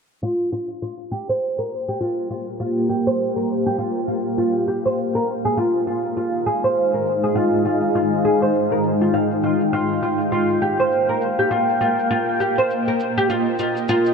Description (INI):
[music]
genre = organic downtempo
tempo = 101 BPM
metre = 4/4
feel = swing 59% on 16ths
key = unclear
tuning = A4 = 440 Hz
[part]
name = granular cloud pad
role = sustained chords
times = 2.2-14.1 s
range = Ab3 to G5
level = -21 LUFS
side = equal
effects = built-in reverb
[part]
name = oud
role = arpeggios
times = 0.2-14.1 s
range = F4 to F5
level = -21 LUFS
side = equal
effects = low-pass filter, ping-pong delay
[part]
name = cabasa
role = drums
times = 0.2-14.1 s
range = none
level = -50 LUFS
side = left 1 dB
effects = none
[sound]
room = moderate huge ambient reverb, RT60 6.5 s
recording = low-pass filter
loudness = -18 LUFS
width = side -5 dB against mid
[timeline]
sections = 0.2-14.1 A section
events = filter sweep on oud 0.2-14.1; filter sweep on ambient pad 0.2-14.1; filter sweep 0.2-14.1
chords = 0.2 Gm7/Bb; 5.0 Fm7/Ab; 9.7 Eb69/Bb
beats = | 0.23 0.82 1.42 2.01 | 2.60 3.20 3.79 4.39 | 4.98 5.58 6.17 6.76 | 7.36 7.95 8.54 9.14 | 9.73 10.33 10.92 11.52 | 12.11 12.70 13.30 13.89